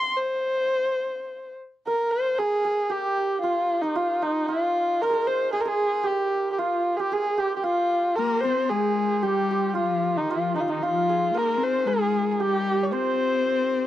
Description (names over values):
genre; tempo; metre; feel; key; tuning
persian; 114 BPM; 3/4; straight; C dastgah shur; A4 = 440 Hz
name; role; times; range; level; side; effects
dark kamancheh; melody; 0.0-13.9 s; Eb4 to C6; -23 LUFS; equal; none
santur; second line; 1.9-13.9 s; Eb4 to C5; -30 LUFS; right 6 dB; none
clear cello; second line; 8.2-13.9 s; Eb3 to C4; -27 LUFS; left 7 dB; none
room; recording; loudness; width
little or no reverb; dry, close 1970s-style studio recording; -22 LUFS; side -13 dB against mid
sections
0.0-1.9 A section; 1.9-13.9 B section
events
none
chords
none